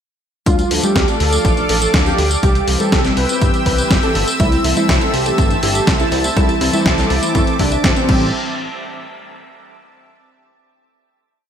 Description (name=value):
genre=italo disco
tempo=122 BPM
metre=4/4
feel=straight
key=A minor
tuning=A4 = 440 Hz
part: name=wide unison lead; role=melody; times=0.5-8.3 s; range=C4 to B4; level=-20 LUFS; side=right 1 dB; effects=ping-pong delay
part: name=lush unison pad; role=sustained chords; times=0.7-8.3 s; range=C4 to E6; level=-22 LUFS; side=right 1 dB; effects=chorus
part: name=chorused synth bass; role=bass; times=0.5-8.3 s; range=G1 to D2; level=-20 LUFS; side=equal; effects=tube saturation
part: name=dusty soul sampler-style drum kit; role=drums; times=0.5-8.2 s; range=congas, crash cymbal, hi-hat, snare drum, tambourine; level=-19 LUFS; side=left 1 dB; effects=small room ambience, gated reverb
part: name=electronic kick drum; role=drums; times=0.5-8.2 s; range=none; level=-18 LUFS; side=equal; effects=overdrive, small room ambience
part: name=mellow synth brass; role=stabs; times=0.7-8.3 s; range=E3 to A4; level=-23 LUFS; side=left 1 dB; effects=chorus, ping-pong delay
part: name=analog pluck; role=arpeggios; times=4.4-8.3 s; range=G3 to E5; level=-26 LUFS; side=right 2 dB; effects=chorus, phaser, cassette tape, ping-pong delay
room=moderate lush hall reverb, RT60 1.9 s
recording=bright 1980s-style digital production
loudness=-13 LUFS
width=side -8 dB against mid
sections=0.5-8.3 chorus; 8.3-10.3 final hit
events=none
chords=0.5 Dm; 2.4 C; 4.4 Am; 8.1 Am7; 8.3 N.C.